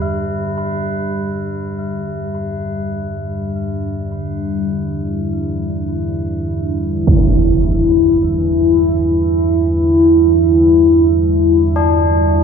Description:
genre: dark ambient drone.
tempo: free time.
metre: none.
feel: none.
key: E minor.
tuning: A4 = 441 Hz.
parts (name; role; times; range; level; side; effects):
dark analog pad; sustained chords; 0.0-12.4 s; G3 to E4; -15 LUFS; left 1 dB; chorus, phaser.
tubular bells; arpeggios; 0.0-12.4 s; D4 to B4; -25 LUFS; left 3 dB; ping-pong delay.
deep rumbling drone; drone; 1.1-12.4 s; E2; -22 LUFS; right 1 dB; built-in reverb, wide subtle chorus.
impact; percussion; 7.1-7.3 s; none; -16 LUFS; right 1 dB; low-pass filter on sfx.
room: wet cathedral reverb, RT60 5.5 s.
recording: none.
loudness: -13 LUFS.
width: side -6 dB against mid.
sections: 0.0-12.4 A section.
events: fade-in on synth drone 0.0-12.4; fade-in on tubular bells 0.0-12.4.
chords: 0.0 Em.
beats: free time.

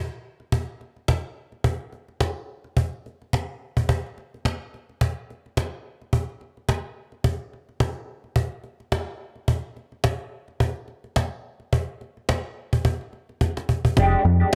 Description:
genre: disco.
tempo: 107 BPM.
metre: 4/4.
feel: swing 56% on 16ths.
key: F dorian.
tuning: A4 = 440 Hz.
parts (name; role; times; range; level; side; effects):
cajon; drums; 0.4-14.6 s; none; -25 LUFS; equal; none.
mellow electric guitar; accompaniment; 14.0-14.6 s; Ab3 to G4; -24 LUFS; equal; wah.
picked electric bass; bass; 14.0-14.6 s; F1 to F2; -20 LUFS; equal; none.
room: little or no reverb.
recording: none.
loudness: -26 LUFS.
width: mono.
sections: 0.0-14.0 A section.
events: drum fill 13.4-14.0.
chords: 0.0 N.C.; 14.0 Fm69.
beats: | 0.52 1.08 1.64 2.20 | 2.76 3.32 3.88 4.44 | 5.00 5.56 6.12 6.68 | 7.24 7.80 8.36 8.92 | 9.48 10.04 10.60 11.16 | 11.73 12.29 12.85 13.41 | 13.97 14.53.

